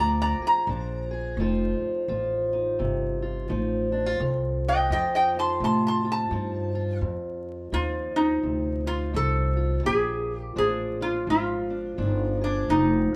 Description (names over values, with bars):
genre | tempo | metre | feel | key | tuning
acoustic country blues, solo or duo | 85 BPM | 4/4 | swing 61% on 8ths | F mixolydian | A4 = 441 Hz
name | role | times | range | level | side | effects
lap resonator guitar | melody | 0.0-13.1 s | D4 to C6 | -27 LUFS | equal | none
fingerpicked steel-string acoustic guitar | accompaniment | 0.0-13.2 s | F2 to C5 | -32 LUFS | equal | none
upright bass | bass | 0.0-13.2 s | F1 to A2 | -31 LUFS | equal | none
room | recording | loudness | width
moderate studio reverb, RT60 0.7 s | band playing live in one room, vinyl crackle | -26 LUFS | mono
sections
0.0-7.0 A section; 7.0-13.2 B section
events
resonator guitar played with a steel bar solo 0.0-7.0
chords
0.0 Bb7; 1.4 F7; 9.9 Bb7